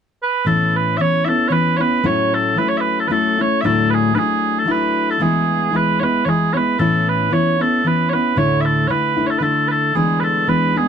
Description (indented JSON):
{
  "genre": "celtic folk",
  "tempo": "114 BPM",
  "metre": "3/4",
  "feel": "swing 53% on 8ths",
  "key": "A major",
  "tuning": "A4 = 440 Hz",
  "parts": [
    { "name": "mellow small bagpipes", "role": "melody", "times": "0.2-10.9 s", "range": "G#4 to E5", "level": "-18 LUFS", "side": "right 3 dB", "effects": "none" },
    { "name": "fingerpicked steel-string acoustic guitar", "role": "accompaniment", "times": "0.4-10.9 s", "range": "D2 to E4", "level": "-18 LUFS", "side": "left 2 dB", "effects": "none" }
  ],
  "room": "light reverb",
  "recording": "dark, warm production",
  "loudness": "-15 LUFS",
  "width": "side -7 dB against mid",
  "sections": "0.5-10.9 A section",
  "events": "none",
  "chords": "0.5 Aadd9; 2.0 F#m7/A; 3.6 Dadd9; 5.2 E; 6.8 Aadd9; 8.4 Dsus2; 9.9 E7"
}